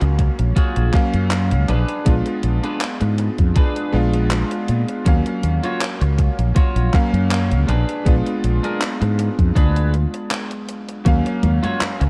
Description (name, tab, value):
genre	vaporwave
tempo	80 BPM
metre	4/4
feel	swing 54% on 16ths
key	Eb minor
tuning	A4 = 444 Hz
part	bright electric grand piano	accompaniment	0.0-12.1 s	Gb3 to F5	-26 LUFS	equal	subtle chorus, analog delay
part	electric guitar at the edge of break-up	riff	0.0-12.1 s	D4 to Db5	-30 LUFS	equal	lush chorus, analog delay
part	mellow fretless electric bass	bass	0.0-12.1 s	Bb1 to Bb2	-20 LUFS	equal	tube saturation
part	gated 80s digital drum machine	drums	0.0-12.1 s	congas, handclaps, hi-hat	-29 LUFS	equal	gated reverb, overdrive, small room ambience
part	electronic kick drum	drums	0.2-11.2 s	none	-18 LUFS	equal	overdrive, small room ambience
room	little or no reverb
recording	dark, warm production, faint mains hum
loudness	-19 LUFS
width	mono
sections	0.0-12.1 A section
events	none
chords	0.0 Ebm9 (rootless); 1.7 Bb7b9; 5.1 Ebm9; 7.7 Bb7b9; 11.1 Ebm9